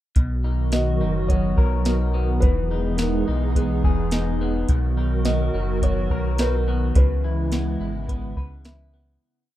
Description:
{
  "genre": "dream pop",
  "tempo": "106 BPM",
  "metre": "4/4",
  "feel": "straight",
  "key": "B major",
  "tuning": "A4 = 440 Hz",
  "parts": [
    { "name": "hollow soft pad", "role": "sustained chords", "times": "0.2-9.2 s", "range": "C#3 to A#4", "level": "-26 LUFS", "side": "equal", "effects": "ensemble chorus" },
    { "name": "electric guitar through a small old amp", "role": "arpeggios", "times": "0.2-9.6 s", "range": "B2 to B4", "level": "-30 LUFS", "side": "left 3 dB", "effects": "wide subtle chorus, tape echo" },
    { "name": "sub bass with octave", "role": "bass", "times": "0.2-9.2 s", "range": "E1 to C#2", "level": "-24 LUFS", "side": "equal", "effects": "none" },
    { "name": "soft vintage rhythm box", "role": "drums", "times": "0.2-8.8 s", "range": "hi-hat, kick drum, snare drum", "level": "-21 LUFS", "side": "equal", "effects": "none" },
    { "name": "felt-muted upright piano", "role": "melody", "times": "0.7-8.6 s", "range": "G#4 to D#5", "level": "-31 LUFS", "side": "right 1 dB", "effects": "tape echo, plate reverb" }
  ],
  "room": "light reverb",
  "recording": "rough home demo mix",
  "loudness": "-19 LUFS",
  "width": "side -13 dB against mid",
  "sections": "0.2-9.2 verse",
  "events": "fade-out 7.0-9.2",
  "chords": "0.2 Bmaj7; 2.4 Emaj7; 4.7 Bmaj7; 7.0 C#m7"
}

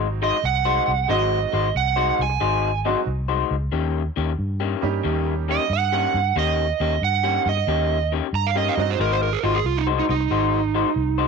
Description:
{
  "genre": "electric blues shuffle",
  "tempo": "91 BPM",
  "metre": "4/4",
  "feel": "swing 67% on 8ths",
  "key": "Ab mixolydian",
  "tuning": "A4 = 440 Hz",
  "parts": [
    { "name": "bright grand piano", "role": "accompaniment", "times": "0.0-9.0 s", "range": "Gb3 to G4", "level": "-28 LUFS", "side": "right 15 dB", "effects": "none" },
    { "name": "electric guitar through a small old amp", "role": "riff", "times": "0.0-11.3 s", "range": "Eb3 to C5", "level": "-24 LUFS", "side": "left 17 dB", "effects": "none" },
    { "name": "vintage muted fingered electric bass", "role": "bass", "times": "0.0-11.3 s", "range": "Ab1 to G2", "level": "-24 LUFS", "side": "equal", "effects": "none" },
    { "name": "overdriven slide guitar", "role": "second line", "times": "0.2-11.3 s", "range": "Eb4 to Bb5", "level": "-22 LUFS", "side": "right 14 dB", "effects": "none" }
  ],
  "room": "light reverb",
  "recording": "1960s-style stereo with parts hard left and right",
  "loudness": "-19 LUFS",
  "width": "side -5 dB against mid",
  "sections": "0.0-11.3 A section",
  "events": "electric slide guitar solo 0.0-11.3",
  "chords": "0.0 Ab7; 3.7 Eb7; 9.0 Ab7"
}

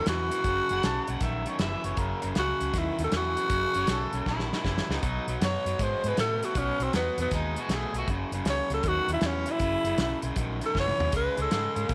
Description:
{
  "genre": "electric blues shuffle",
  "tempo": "157 BPM",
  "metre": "4/4",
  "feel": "swing 65% on 8ths",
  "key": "unclear",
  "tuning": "A4 = 443 Hz",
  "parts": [
    { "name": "growling tenor saxophone", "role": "melody", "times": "0.0-11.9 s", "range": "B3 to C#5", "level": "-31 LUFS", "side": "equal", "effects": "none" },
    { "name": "crunchy overdriven guitar", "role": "riff", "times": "0.0-11.9 s", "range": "F#2 to A#3", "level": "-36 LUFS", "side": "equal", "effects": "none" },
    { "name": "vintage muted fingered electric bass", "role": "bass", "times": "0.1-11.9 s", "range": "F#1 to A#2", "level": "-35 LUFS", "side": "equal", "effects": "none" },
    { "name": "warm soul drum kit", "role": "drums", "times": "0.1-11.9 s", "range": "crash cymbal, hi-hat, kick drum, snare drum, toms", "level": "-34 LUFS", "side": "equal", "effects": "none" },
    { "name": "mellow harmonica", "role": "second line", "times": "0.7-8.1 s", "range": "D#4 to A5", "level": "-38 LUFS", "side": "equal", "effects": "none" }
  ],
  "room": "light reverb, studio reverb",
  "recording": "none",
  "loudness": "-28 LUFS",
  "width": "mono",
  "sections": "0.0-11.9 A section",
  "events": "drum fill 4.3-5.0, 10.7-11.1",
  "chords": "0.0 F#7(no3); 5.0 B7(no3); 8.1 F#7(no3); 11.1 C#5"
}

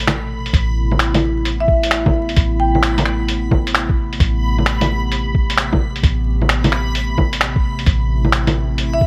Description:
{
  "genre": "future garage",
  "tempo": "131 BPM",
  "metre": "4/4",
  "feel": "swing 66% on 16ths",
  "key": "A minor",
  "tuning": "A4 = 442 Hz",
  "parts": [
    { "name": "warbly tape-like pad", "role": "sustained chords", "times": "0.0-9.1 s", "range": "B2 to A4", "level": "-27 LUFS", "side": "equal", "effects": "chorus, built-in reverb, sidechain pumping" },
    { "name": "soft 808-style bass", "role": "bass", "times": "0.0-9.1 s", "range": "A1", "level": "-22 LUFS", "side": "equal", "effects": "tube saturation, sidechain pumping" },
    { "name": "lo-fi sampler-style drum kit", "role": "drums", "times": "0.0-8.9 s", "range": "bongos, finger snaps, hi-hat", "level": "-20 LUFS", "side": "equal", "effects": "none" },
    { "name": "backwards swelling texture", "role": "texture", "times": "0.0-9.1 s", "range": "B5", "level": "-33 LUFS", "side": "equal", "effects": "built-in reverb" },
    { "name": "electronic kick drum", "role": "drums", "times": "0.5-9.1 s", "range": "none", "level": "-19 LUFS", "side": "equal", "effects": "none" },
    { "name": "marimba with medium hard mallets", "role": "melody", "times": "1.6-3.3, 8.9-9.1 s", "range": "E5 to G5", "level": "-23 LUFS", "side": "equal", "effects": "digital delay" }
  ],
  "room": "light reverb",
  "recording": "vinyl crackle",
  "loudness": "-17 LUFS",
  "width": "mono",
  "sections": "0.5-9.1 A section",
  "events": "break 0.0-0.5",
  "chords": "0.0 Amadd9"
}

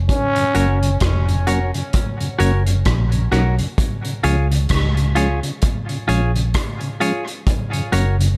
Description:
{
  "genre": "dub reggae",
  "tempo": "65 BPM",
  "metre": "4/4",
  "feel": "swing 59% on 16ths",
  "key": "F# major",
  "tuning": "A4 = 440 Hz",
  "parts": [
    { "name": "vintage muted fingered electric bass", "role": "bass", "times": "0.0-8.4 s", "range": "E#1 to C#2", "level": "-20 LUFS", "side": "equal", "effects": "none" },
    { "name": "growling trombone", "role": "melody", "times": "0.1-1.0 s", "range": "C#4", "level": "-26 LUFS", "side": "equal", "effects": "dub echo" },
    { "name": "vintage drum kit", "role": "drums", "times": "0.1-8.4 s", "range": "hi-hat, kick drum, rim click", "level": "-24 LUFS", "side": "equal", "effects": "none" },
    { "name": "mellow tonewheel organ", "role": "accompaniment", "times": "0.4-8.3 s", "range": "F#2 to C#4", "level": "-27 LUFS", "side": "equal", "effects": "chorus vibrato" },
    { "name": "semi-hollow electric guitar", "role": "accompaniment", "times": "0.5-8.2 s", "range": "E#4 to C#5", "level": "-27 LUFS", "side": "equal", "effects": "dub echo" }
  ],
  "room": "light reverb, small room ambience",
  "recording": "none",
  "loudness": "-19 LUFS",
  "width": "mono",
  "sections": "0.1-8.4 A section",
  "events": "none",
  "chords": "0.1 F#; 3.8 C#; 7.5 F#"
}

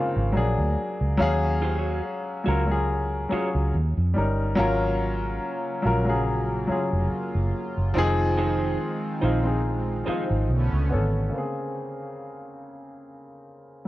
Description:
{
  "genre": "R&B, neo-soul",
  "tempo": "71 BPM",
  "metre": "4/4",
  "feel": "swing 54% on 16ths",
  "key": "Bb minor",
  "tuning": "A4 = 440 Hz",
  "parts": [
    { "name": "warm upright piano", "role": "accompaniment", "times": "0.0-13.9 s", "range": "Db3 to F5", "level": "-26 LUFS", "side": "left 2 dB", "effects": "none" },
    { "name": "vintage muted fingered electric bass", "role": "bass", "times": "0.2-11.3 s", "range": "F1 to F2", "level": "-24 LUFS", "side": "equal", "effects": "none" },
    { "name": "electric guitar through a small old amp", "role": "second line", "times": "1.6-10.2 s", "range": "Eb4 to Db5", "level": "-34 LUFS", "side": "right 5 dB", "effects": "none" },
    { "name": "chorused pulse-width pad", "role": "sustained chords", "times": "4.6-11.3 s", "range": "Db3 to F4", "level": "-32 LUFS", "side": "right 1 dB", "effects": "none" }
  ],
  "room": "light reverb",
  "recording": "worn, warbling old tape, cassette tape, warbly pitch drift",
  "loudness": "-22 LUFS",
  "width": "side -16 dB against mid",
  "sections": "0.0-11.3 A section; 11.3-13.9 B section",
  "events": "none",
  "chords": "0.3 Bb7alt; 1.2 Ebm11; 3.7 Eb7; 4.6 Ab13sus4; 7.9 Fm7; 10.5 Bm9; 11.3 Bbm9"
}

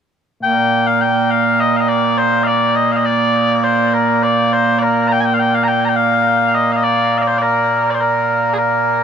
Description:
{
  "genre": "scottish traditional",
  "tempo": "103 BPM",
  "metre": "4/4",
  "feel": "straight",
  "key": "Bb major",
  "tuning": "A4 = 439 Hz",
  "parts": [
    { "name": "mellow small bagpipes", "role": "melody", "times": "0.4-9.0 s", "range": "Bb2 to Bb5", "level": "-12 LUFS", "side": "equal", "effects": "tape echo" }
  ],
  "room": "moderate huge ambient reverb, RT60 6.4 s",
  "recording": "none",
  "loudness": "-12 LUFS",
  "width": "side -7 dB against mid",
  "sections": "0.4-9.0 A section",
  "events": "none",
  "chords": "none"
}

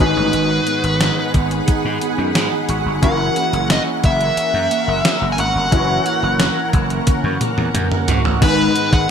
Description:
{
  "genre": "1980s-style pop",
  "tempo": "89 BPM",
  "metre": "4/4",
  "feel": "straight",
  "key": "unclear",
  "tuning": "A4 = 440 Hz",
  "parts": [
    { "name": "dark smooth lead guitar", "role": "melody", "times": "0.0-9.1 s", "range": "B4 to G#5", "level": "-20 LUFS", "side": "left 1 dB", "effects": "overdrive, ping-pong delay" },
    { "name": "clear concert grand piano", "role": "accompaniment", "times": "0.0-9.1 s", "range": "G#2 to C#5", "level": "-22 LUFS", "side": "left 3 dB", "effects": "ensemble chorus" },
    { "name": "shimmering ambient pad", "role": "sustained chords", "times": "0.0-9.1 s", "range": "G#4 to D#6", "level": "-24 LUFS", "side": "right 1 dB", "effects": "chorus, built-in reverb" },
    { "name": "clean electric guitar", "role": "riff", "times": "0.0-9.1 s", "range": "D#3 to F#4", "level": "-25 LUFS", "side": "right 6 dB", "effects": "analog chorus" },
    { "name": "gritty slap bass", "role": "bass", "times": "0.0-9.1 s", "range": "F#1 to G#2", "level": "-22 LUFS", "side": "equal", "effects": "overdrive" },
    { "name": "gated 80s digital drum machine", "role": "drums", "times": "0.3-9.1 s", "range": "crash cymbal, hi-hat, kick drum, snare drum, toms", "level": "-17 LUFS", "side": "equal", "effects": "gated reverb, gated reverb snare, overdrive" }
  ],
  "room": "moderate plate reverb, RT60 2.0 s",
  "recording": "bright 1980s-style digital production",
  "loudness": "-15 LUFS",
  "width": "side -7 dB against mid",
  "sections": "0.0-8.4 A section",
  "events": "drum fill 7.1-8.4",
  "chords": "0.0 G#m7; 3.0 F#7; 8.4 G#m"
}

